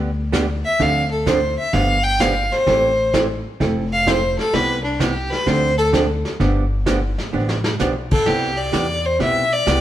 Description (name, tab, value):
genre	country, western swing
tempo	128 BPM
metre	4/4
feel	swing 68% on 8ths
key	C major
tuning	A4 = 440 Hz
part	archtop guitar, miked and amplified	accompaniment	0.0-9.8 s	C3 to A4	-23 LUFS	right 4 dB	none
part	upright bass	bass	0.0-9.8 s	F1 to E2	-23 LUFS	left 1 dB	none
part	vintage brush drum kit	drums	0.3-9.8 s	brushed snare drum, crash cymbal, hi-hat, kick drum, snare drum	-24 LUFS	equal	none
part	clear fiddle	melody	0.6-9.8 s	D4 to G5	-18 LUFS	left 1 dB	none
room	moderate stone room reverb, RT60 1.2 s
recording	band playing live in one room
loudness	-16 LUFS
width	side -12 dB against mid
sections	0.0-8.3 A section; 8.3-9.8 B section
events	fiddle solo 0.0-8.3; drum fill 7.3-7.8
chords	0.0 G; 0.8 Dm7; 1.7 G7; 2.7 Am7; 3.6 Fmaj7; 4.5 Cmaj7; 5.5 Dm7; 6.4 G7; 8.3 Cmaj7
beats	0.33 | 0.80 1.27 1.73 2.20 | 2.67 3.14 3.60 4.07 | 4.54 5.00 5.47 5.94 | 6.41 6.87 7.34 7.80 | 8.27 8.74 9.21 9.67